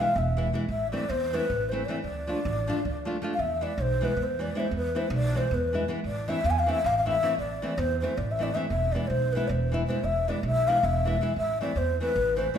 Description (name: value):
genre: balkan folk, Balkan wedding band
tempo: 316 BPM (eighths)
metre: 7/8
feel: straight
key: unclear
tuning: A4 = 439 Hz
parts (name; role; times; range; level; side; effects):
- breathy mellow low ney; melody; 0.0-12.6 s; B4 to G#5; -27 LUFS; left 2 dB; none
- nylon-string guitar; accompaniment; 0.0-12.6 s; E3 to F4; -32 LUFS; equal; none
- upright bass; bass; 0.2-12.5 s; E1 to E2; -30 LUFS; right 1 dB; none
room: wet large studio reverb, RT60 1.3 s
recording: band playing live in one room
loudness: -25 LUFS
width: side -8 dB against mid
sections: 0.0-3.4 A section; 3.4-12.6 A section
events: none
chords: 0.0 E; 0.7 Am; 2.0 Dm; 3.4 E; 6.1 Am; 8.7 E; 11.4 Am